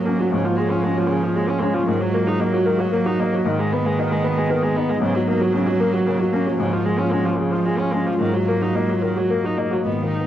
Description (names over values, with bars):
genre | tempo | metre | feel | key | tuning
neoclassical piano and strings | 114 BPM | 3/4 | rubato | unclear | A4 = 440 Hz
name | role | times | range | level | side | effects
warm cello | second line | 0.0-10.3 s | D#3 to F#3 | -24 LUFS | right 4 dB | none
felt-muted upright piano | accompaniment | 0.0-10.3 s | G#2 to B4 | -22 LUFS | left 3 dB | none
rich viola | accompaniment | 0.0-10.3 s | C#3 to D#4 | -24 LUFS | right 1 dB | none
deep dark ambient pad | sustained chords | 0.0-10.3 s | G#3 to D#5 | -27 LUFS | equal | chorus, built-in reverb
room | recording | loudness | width
light reverb | worn, warbling old tape, cassette tape, warbly pitch drift | -18 LUFS | side -11 dB against mid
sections
0.0-9.9 A section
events
none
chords
0.3 C#/G#; 1.9 D#m/G#; 3.4 G#m; 5.0 F#/G#; 6.6 C#/G#; 8.2 D#m/G#